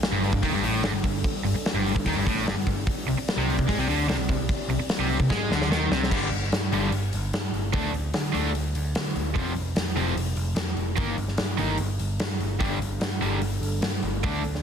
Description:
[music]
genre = hard rock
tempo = 148 BPM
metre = 4/4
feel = straight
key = unclear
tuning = A4 = 440 Hz
[part]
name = dark analog pad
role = sustained chords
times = 0.0-6.1, 12.9-14.6 s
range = G3 to D5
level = -37 LUFS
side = right 1 dB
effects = chorus
[part]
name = big rock drum kit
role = drums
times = 0.0-14.6 s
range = crash cymbal, hi-hat, kick drum, snare drum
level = -27 LUFS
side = equal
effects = none
[part]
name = cranked stack guitar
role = riff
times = 0.1-14.4 s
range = F2 to Eb4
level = -29 LUFS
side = right 12 dB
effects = overdrive
[part]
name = overdriven electric guitar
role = riff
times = 0.1-14.4 s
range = F2 to Eb4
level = -30 LUFS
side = left 10 dB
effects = spring reverb
[part]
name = overdriven picked electric bass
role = bass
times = 0.1-14.6 s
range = F1 to D3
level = -29 LUFS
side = equal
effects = none
[sound]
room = light reverb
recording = dense, heavily limited modern master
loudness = -23 LUFS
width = side -7 dB against mid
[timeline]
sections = 0.0-6.1 A section; 6.1-14.6 B section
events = drum fill 5.3-6.1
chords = 0.0 G5; 2.9 C5; 6.1 G5; 7.7 D5; 9.4 F5; 11.0 Eb/G; 12.6 G5

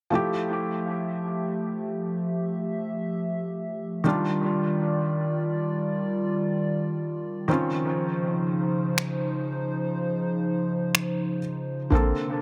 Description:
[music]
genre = contemporary R&B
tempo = 61 BPM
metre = 4/4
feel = swing 54% on 16ths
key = F major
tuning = A4 = 440 Hz
[part]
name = felt-muted upright piano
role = accompaniment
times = 0.1-12.4 s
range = D3 to A4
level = -29 LUFS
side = equal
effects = dub echo
[part]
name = hollow soft pad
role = sustained chords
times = 0.7-12.4 s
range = C3 to E5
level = -29 LUFS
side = equal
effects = chorus, sidechain pumping
[part]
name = booming analog drum machine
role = drums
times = 9.0-12.1 s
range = finger snaps, kick drum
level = -25 LUFS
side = equal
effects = none
[sound]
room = light reverb, digital ambience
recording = echo-heavy mix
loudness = -27 LUFS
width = mono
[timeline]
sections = 0.1-12.4 A section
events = none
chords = 0.1 Fmaj9; 4.0 Ebmaj9; 7.5 Dbmaj9

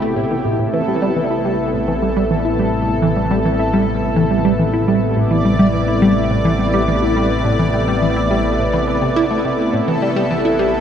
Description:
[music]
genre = ambient, sequencer-driven space music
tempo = 105 BPM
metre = 4/4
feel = straight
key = A minor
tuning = A4 = 440 Hz
[part]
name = lush unison pad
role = sustained chords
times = 0.0-10.8 s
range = B2 to D5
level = -18 LUFS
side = equal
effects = chorus
[part]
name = tight sequenced synth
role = riff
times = 0.0-10.7 s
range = A2 to E4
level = -18 LUFS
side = equal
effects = chorus, phaser, tape echo
[part]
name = fat analog bass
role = bass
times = 0.0-10.8 s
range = A1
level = -23 LUFS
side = equal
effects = none
[sound]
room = wet echo chamber reverb, RT60 2.2 s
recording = echo-heavy mix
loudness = -14 LUFS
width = side -8 dB against mid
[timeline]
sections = 0.6-10.8 A section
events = none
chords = 0.0 Amadd9

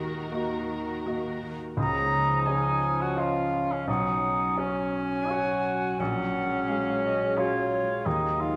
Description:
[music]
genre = cinematic, emotional film score for orchestra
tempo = 86 BPM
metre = 3/4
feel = rubato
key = unclear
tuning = A4 = 440 Hz
[part]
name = muted studio violin section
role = melody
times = 0.0-1.5 s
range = Bb5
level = -45 LUFS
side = equal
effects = none
[part]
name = muted studio violin section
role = second line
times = 0.0-1.5 s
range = Bb4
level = -44 LUFS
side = equal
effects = none
[part]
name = clear baby grand piano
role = accompaniment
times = 0.0-8.6 s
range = Bb1 to Eb5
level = -35 LUFS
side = equal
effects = none
[part]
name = muted studio viola section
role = accompaniment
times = 0.0-1.5 s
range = Gb4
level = -41 LUFS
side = equal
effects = none
[part]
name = concert harp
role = arpeggios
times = 0.0-8.6 s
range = Bb2 to Eb5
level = -35 LUFS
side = equal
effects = none
[part]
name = muted studio cello section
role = bass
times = 0.0-1.5 s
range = Eb3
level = -40 LUFS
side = equal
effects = none
[part]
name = bright concert flute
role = second line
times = 1.8-8.5 s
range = Db5 to Bb5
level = -35 LUFS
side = equal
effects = none
[part]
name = dark cor anglais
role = second line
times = 1.8-8.6 s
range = Db4 to Gb4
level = -31 LUFS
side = equal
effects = none
[part]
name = warm French horn section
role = sustained chords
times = 1.8-8.6 s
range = F3 to Eb4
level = -35 LUFS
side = equal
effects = none
[sound]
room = wet scoring stage reverb, RT60 1.6 s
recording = none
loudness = -27 LUFS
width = mono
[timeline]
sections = 0.0-1.8 A section; 1.8-8.6 B section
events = none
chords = 0.0 Ebm; 1.8 Dbadd9; 3.9 Badd9; 6.0 Gbadd9/Bb; 8.1 Ebm

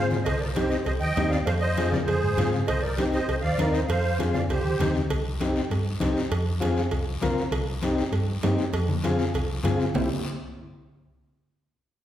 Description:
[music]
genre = latin, cumbia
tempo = 198 BPM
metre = 4/4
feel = straight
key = C minor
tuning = A4 = 440 Hz
[part]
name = musette accordion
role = melody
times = 0.0-4.9 s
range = G4 to G5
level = -29 LUFS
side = right 2 dB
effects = none
[part]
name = round clay ocarina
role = second line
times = 0.0-4.9 s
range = G4 to Eb5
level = -32 LUFS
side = right 3 dB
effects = none
[part]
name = overdriven combo organ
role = accompaniment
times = 0.0-10.1 s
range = C4 to Bb4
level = -28 LUFS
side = left 2 dB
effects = none
[part]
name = hollow-body short-scale fingered electric bass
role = bass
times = 0.0-10.1 s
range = C2 to Ab2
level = -27 LUFS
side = equal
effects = none
[part]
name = congas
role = percussion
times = 0.1-10.0 s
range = none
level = -32 LUFS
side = left 2 dB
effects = none
[part]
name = guiro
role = percussion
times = 0.1-10.0 s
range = none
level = -41 LUFS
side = left 4 dB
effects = none
[part]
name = cowbell and timbales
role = percussion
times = 0.3-10.0 s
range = none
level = -34 LUFS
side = right 3 dB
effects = none
[sound]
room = wet large studio reverb, RT60 1.4 s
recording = heard from further back in the room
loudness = -23 LUFS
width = side -11 dB against mid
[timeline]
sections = 0.0-5.1 A section; 5.1-9.9 B section; 9.9-11.2 C section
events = drum fill 0.0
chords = 0.3 Cm; 1.5 Fm; 2.7 Cm; 3.9 Fm; 4.5 Cm; 6.3 Fm; 7.5 Cm; 8.7 Fm; 9.9 C

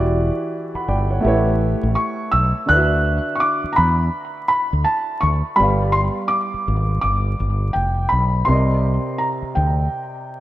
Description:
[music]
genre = lo-fi hip hop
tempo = 83 BPM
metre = 4/4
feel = swing 62% on 16ths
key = unclear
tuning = A4 = 440 Hz
[part]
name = dark upright piano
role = accompaniment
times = 0.0-10.4 s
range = C3 to B5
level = -23 LUFS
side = right 1 dB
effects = cassette tape, low-pass filter
[part]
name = fretless electric bass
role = bass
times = 0.0-9.9 s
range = E1 to E2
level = -19 LUFS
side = equal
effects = none
[part]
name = felt-muted upright piano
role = melody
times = 2.0-10.4 s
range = G5 to F#6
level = -20 LUFS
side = equal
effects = low-pass filter
[sound]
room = moderate lush hall reverb, RT60 2.5 s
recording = rough home demo mix, vinyl crackle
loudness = -17 LUFS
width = side -14 dB against mid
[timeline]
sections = 0.0-10.4 A section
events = none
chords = 0.0 Em9; 1.2 A7; 2.7 D6; 5.6 G7; 8.5 Cm7

